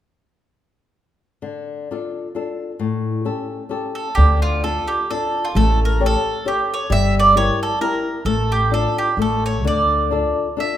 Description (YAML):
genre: italian folk, Italian serenade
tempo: 132 BPM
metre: 3/4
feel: swing 55% on 8ths, rubato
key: D harmonic minor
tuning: A4 = 440 Hz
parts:
  - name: flamenco guitar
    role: accompaniment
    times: 1.4-10.8 s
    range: A2 to C#5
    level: -23 LUFS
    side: left 5 dB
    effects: none
  - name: mandolin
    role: melody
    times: 4.0-10.8 s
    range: F4 to E5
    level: -20 LUFS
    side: right 2 dB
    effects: none
  - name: upright bass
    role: bass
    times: 4.2-10.2 s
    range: G1 to D2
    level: -19 LUFS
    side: right 1 dB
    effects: none
room: moderate recital hall reverb, RT60 1.7 s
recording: minimal, uncompressed stereo recording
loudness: -17 LUFS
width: side -11 dB against mid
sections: 1.4-4.2 A section; 4.2-10.8 B section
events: none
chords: 1.4 Dm; 2.8 A7; 4.2 Dm; 5.6 A7; 6.9 Edim/G; 8.3 Dm/A; 9.2 A; 9.6 Dm